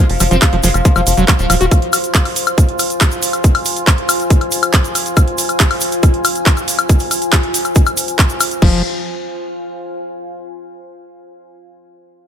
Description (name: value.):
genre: psychedelic trance.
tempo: 139 BPM.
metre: 4/4.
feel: straight.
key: F minor.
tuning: A4 = 441 Hz.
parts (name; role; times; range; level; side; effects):
sitar; melody; 0.0-1.7 s; F3 to C4; -22 LUFS; left 5 dB; phaser, sidechain pumping, ping-pong delay.
screaming distorted acid line; riff; 0.0-1.7, 8.6-8.8 s; F3 to Gb4; -19 LUFS; equal; distortion, chorus, auto-pan, sidechain pumping, ping-pong delay.
deep dark ambient pad; texture; 0.0-10.3 s; F4 to Ab5; -21 LUFS; left 1 dB; chorus, built-in reverb, sidechain pumping.
tight sequencer bass; bass; 0.1-1.7, 8.6-8.8 s; Eb1 to F1; -16 LUFS; equal; tube saturation.
techno drum kit; drums; 0.1-8.7 s; crash cymbal, handclaps, hi-hat, woodblock; -17 LUFS; left 1 dB; none.
egg shaker; percussion; 0.2-8.6 s; none; -22 LUFS; left 2 dB; none.
electronic kick drum; drums; 0.4-8.7 s; none; -13 LUFS; equal; none.
room: light reverb.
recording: none.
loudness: -11 LUFS.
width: side -9 dB against mid.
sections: 0.0-8.6 A section; 8.6-10.3 B section.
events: none.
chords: 0.0 F5.